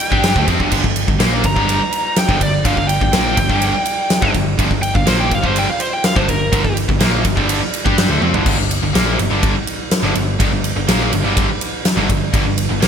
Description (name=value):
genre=hard rock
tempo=124 BPM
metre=4/4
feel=straight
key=G minor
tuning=A4 = 440 Hz
part: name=biting lead guitar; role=melody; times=0.0-6.8 s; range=Bb4 to Bb5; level=-20 LUFS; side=equal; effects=overdrive, ping-pong delay
part: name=huge arena drum kit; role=drums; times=0.0-12.9 s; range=crash cymbal, kick drum, ride cymbal, snare drum, toms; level=-17 LUFS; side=equal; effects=gated reverb
part: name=distorted electric guitar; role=riff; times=0.1-12.9 s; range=G2 to G4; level=-23 LUFS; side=left 11 dB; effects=overdrive
part: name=sludgy distorted guitar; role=riff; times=0.1-12.9 s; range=G2 to G4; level=-22 LUFS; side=right 11 dB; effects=overdrive
part: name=tight distorted guitar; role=riff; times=0.1-12.9 s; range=G2 to G4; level=-24 LUFS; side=equal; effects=distortion
part: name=hollow-body short-scale picked electric bass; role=bass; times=0.1-12.9 s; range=G1 to G2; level=-21 LUFS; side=equal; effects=none
room=light reverb, small room ambience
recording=bright 1980s-style digital production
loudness=-13 LUFS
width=side -7 dB against mid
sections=0.0-8.5 A section; 8.5-12.9 B section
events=lead electric guitar solo 0.0-8.5; drum fill 8.2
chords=0.0 Gm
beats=0.24 | 0.72 1.21 1.69 2.17 | 2.66 3.14 3.62 4.11 | 4.59 5.07 5.55 6.04 | 6.52 7.01 7.49 7.97 | 8.46 8.94 9.43 9.91 | 10.40 10.88 11.37 11.85 | 12.34 12.82